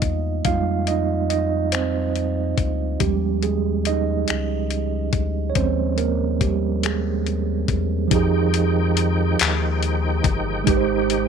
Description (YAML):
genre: slow six-eight R&B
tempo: 47 BPM (dotted quarters)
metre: 6/8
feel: straight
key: F minor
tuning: A4 = 439 Hz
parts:
  - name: mellow tine electric piano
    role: accompaniment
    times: 0.0-11.3 s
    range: F3 to F5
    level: -22 LUFS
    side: right 10 dB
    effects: medium stereo tremolo
  - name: round analog bass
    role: bass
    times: 0.0-11.3 s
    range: G1 to F2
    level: -24 LUFS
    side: left 3 dB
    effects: none
  - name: dusty soul sampler-style drum kit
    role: drums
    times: 0.0-11.3 s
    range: finger snaps, handclaps, hi-hat, kick drum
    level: -23 LUFS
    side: left 6 dB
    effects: none
  - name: bright tonewheel organ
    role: sustained chords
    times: 8.1-11.3 s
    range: Eb3 to G5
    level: -26 LUFS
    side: left 3 dB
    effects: chorus vibrato, fast rotary speaker
room: light reverb, digital ambience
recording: 1960s-style stereo with parts hard left and right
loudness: -19 LUFS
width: side -6 dB against mid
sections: 0.0-8.1 A section; 8.1-11.3 B section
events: tine electric piano solo 0.0-8.1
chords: 0.0 Fm11; 3.0 Eb7sus4; 8.1 Fm9; 10.7 Abmaj7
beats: | 0.45 1.73 | 3.01 4.28 | 5.56 6.84 | 8.11 9.39 | 10.67